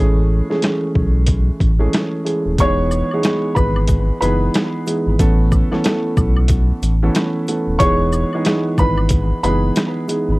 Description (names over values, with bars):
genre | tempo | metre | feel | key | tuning
hip hop, boom-bap hip-hop | 92 BPM | 4/4 | swing 61% on 16ths | E major | A4 = 440 Hz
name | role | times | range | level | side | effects
dark grand piano | accompaniment | 0.0-10.4 s | E3 to A4 | -20 LUFS | right 1 dB | high-pass filter, low-pass filter, cassette tape
sub bass with octave | bass | 0.0-10.4 s | D#1 to B1 | -17 LUFS | equal | none
boom bap sampler-style drum kit | drums | 0.5-10.3 s | hi-hat, kick drum, rim click, shaker, snare drum | -18 LUFS | equal | cassette tape
warm upright piano | melody | 2.6-9.7 s | B4 to C#6 | -22 LUFS | equal | high-pass filter, low-pass filter, cassette tape, tape echo
egg shaker and woodblock | percussion | 2.6-10.3 s | none | -34 LUFS | left 3 dB | none
room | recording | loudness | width
little or no reverb | home recording on cassette | -14 LUFS | side -21 dB against mid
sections
0.0-2.6 A section; 2.6-10.4 B section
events
none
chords
0.0 Amaj7; 2.6 Emaj7; 5.2 Aadd9; 7.8 Emaj7